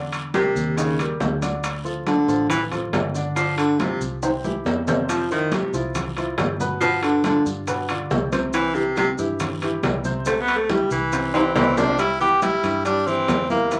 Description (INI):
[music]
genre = Afro-Cuban jazz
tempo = 139 BPM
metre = 4/4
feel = straight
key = C major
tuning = A4 = 439 Hz
[part]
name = warm baby grand piano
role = accompaniment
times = 0.0-13.8 s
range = B2 to E5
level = -30 LUFS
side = equal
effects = none
[part]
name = fingered electric bass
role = bass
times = 0.0-13.8 s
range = G1 to G2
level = -33 LUFS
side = equal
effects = none
[part]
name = bongos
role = percussion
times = 0.1-13.8 s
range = none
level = -36 LUFS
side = equal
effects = none
[part]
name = congas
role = percussion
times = 0.1-13.8 s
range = none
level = -35 LUFS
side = equal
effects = none
[part]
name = maracas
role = percussion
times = 0.1-13.8 s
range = none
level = -42 LUFS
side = equal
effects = none
[part]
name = timbales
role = percussion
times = 0.1-13.8 s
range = none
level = -29 LUFS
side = equal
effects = none
[part]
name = bright baritone saxophone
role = second line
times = 0.3-13.8 s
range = C3 to B3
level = -24 LUFS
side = equal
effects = none
[part]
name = guiro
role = percussion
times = 0.3-13.8 s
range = none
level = -46 LUFS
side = equal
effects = none
[part]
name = bright tenor saxophone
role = melody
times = 11.3-13.8 s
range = Bb3 to G4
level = -23 LUFS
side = equal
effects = none
[sound]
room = wet club reverb, RT60 0.5 s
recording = vinyl crackle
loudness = -22 LUFS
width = mono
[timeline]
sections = 0.0-12.0 A section; 12.0-13.8 B section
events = baritone saxophone solo 0.0-12.0; drum fill 4.2-5.1, 11.3-12.0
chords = 0.0 Em7b5; 0.8 Eb; 1.6 Dmadd11; 3.4 G7sus4; 4.2 C; 5.1 Fsus2; 6.8 G7; 8.5 C